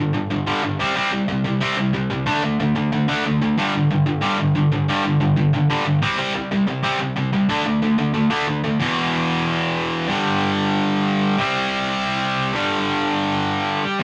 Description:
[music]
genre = punk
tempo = 184 BPM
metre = 4/4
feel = straight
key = G major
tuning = A4 = 442 Hz
[part]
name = distorted electric guitar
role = solo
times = 0.0-14.0 s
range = E2 to D4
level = -20 LUFS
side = equal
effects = overdrive
[sound]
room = moderate studio reverb, RT60 0.6 s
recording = rough rehearsal-room recording, nothing above 10.3 kHz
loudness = -20 LUFS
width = mono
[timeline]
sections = 0.0-8.8 A section; 8.8-14.0 B section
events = none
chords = 0.0 G5; 0.8 C5; 2.3 D5; 3.6 G5; 6.0 C5; 7.5 D5; 8.8 E5; 10.1 G5; 11.4 C5; 12.5 G5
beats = 0.30 0.63 | 0.96 1.28 1.61 1.94 | 2.26 2.59 2.92 3.24 | 3.57 3.90 4.22 4.55 | 4.87 5.20 5.53 5.85 | 6.18 6.50 6.83 7.15 | 7.48 7.81 8.13 8.46 | 8.78 9.11 9.44 9.76 | 10.09 10.41 10.74 11.06 | 11.39 11.72 12.04 12.37 | 12.69 13.02 13.35 13.67 | 14.00

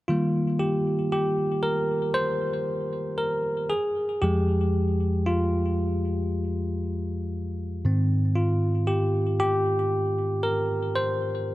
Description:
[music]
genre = pop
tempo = 58 BPM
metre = 4/4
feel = straight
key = Eb major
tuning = A4 = 438 Hz
[part]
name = bell-like tine electric piano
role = solo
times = 0.1-11.5 s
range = F2 to C5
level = -23 LUFS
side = equal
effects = none
[sound]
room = light reverb, digital ambience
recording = dark, warm production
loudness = -23 LUFS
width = side -16 dB against mid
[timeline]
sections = 0.0-11.5 A section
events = tine electric piano solo 0.0-11.5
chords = 0.0 Eb; 3.7 Fmadd9; 7.9 Ab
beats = 0.61 1.65 2.68 | 3.72 4.75 5.79 6.82 | 7.86 8.89 9.92 10.96

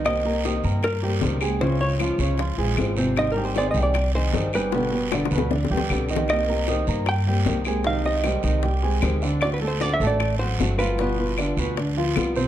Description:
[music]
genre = latin, Cuban son and guajira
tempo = 154 BPM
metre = 4/4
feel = straight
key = C minor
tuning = A4 = 435 Hz
[part]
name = flamenco guitar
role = accompaniment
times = 0.0-12.5 s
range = B2 to Ab4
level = -29 LUFS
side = left 3 dB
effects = none
[part]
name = warm concert grand piano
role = arpeggios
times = 0.0-12.5 s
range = B2 to Eb6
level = -27 LUFS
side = right 2 dB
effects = none
[part]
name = upright bass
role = bass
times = 0.0-12.5 s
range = G1 to G2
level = -25 LUFS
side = equal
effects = none
[part]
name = guiro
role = percussion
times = 0.0-12.5 s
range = none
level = -35 LUFS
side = right 6 dB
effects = none
[part]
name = hollow-body jazz guitar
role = melody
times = 0.1-11.9 s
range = Bb4 to G5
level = -26 LUFS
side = right 2 dB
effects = none
[part]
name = bongos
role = percussion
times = 0.1-12.4 s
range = none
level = -30 LUFS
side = left 7 dB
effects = none
[part]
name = claves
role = percussion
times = 0.1-12.4 s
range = none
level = -34 LUFS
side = left 4 dB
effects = none
[sound]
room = moderate large studio reverb, RT60 0.9 s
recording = dark, warm production, lossy compression artefacts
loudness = -20 LUFS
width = side -12 dB against mid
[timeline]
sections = 0.1-12.5 A section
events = drum fill 4.7-6.3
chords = 0.1 Cm7; 1.6 Dbmaj7; 3.2 Abmaj7; 4.7 G; 6.3 Cm7; 7.9 Abmaj7/C; 9.4 D7; 11.0 G7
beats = | 0.05 0.44 0.83 1.22 | 1.61 2.00 2.39 2.78 | 3.17 3.56 3.95 4.34 | 4.73 5.12 5.51 5.90 | 6.29 6.68 7.08 7.47 | 7.86 8.25 8.64 9.03 | 9.42 9.81 10.20 10.59 | 10.98 11.38 11.77 12.16

